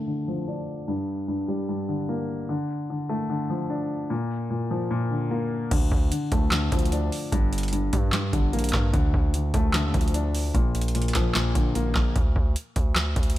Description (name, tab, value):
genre	hip hop, trap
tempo	149 BPM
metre	4/4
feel	half-time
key	D minor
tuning	A4 = 441 Hz
part	dark baby grand piano	accompaniment	0.0-12.2 s	G2 to D4	-26 LUFS	left 1 dB	low-pass filter
part	distorted 808-style bass	bass	5.7-13.4 s	G1 to G2	-26 LUFS	equal	distortion
part	booming analog drum machine	drums	5.7-13.4 s	crash cymbal, handclaps, hi-hat, kick drum, snare drum	-24 LUFS	equal	none
room	little or no reverb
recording	none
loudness	-23 LUFS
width	side -14 dB against mid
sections	0.0-5.7 A section; 5.7-13.4 B section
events	filter sweep on grand piano 0.0-5.7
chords	0.0 Dm; 0.9 Gm; 2.5 Dm; 4.1 Bb; 5.7 Dm; 7.3 Gm; 8.9 Dm; 10.5 Bb; 12.2 N.C.